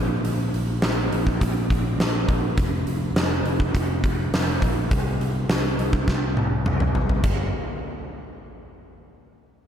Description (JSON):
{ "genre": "hard rock", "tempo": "103 BPM", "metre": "4/4", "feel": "straight", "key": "unclear", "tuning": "A4 = 439 Hz", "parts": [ { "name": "picked electric bass", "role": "bass", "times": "0.0-7.5 s", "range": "F1 to C2", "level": "-25 LUFS", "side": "equal", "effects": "none" }, { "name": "huge arena drum kit", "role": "drums", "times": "0.2-7.4 s", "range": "crash cymbal, hi-hat, kick drum, snare drum, toms", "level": "-22 LUFS", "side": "equal", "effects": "none" } ], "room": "light reverb", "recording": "none", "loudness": "-20 LUFS", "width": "side -9 dB against mid", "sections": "0.0-7.2 A section; 7.2-9.6 B section", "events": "drum fill 6.1-7.2", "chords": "none" }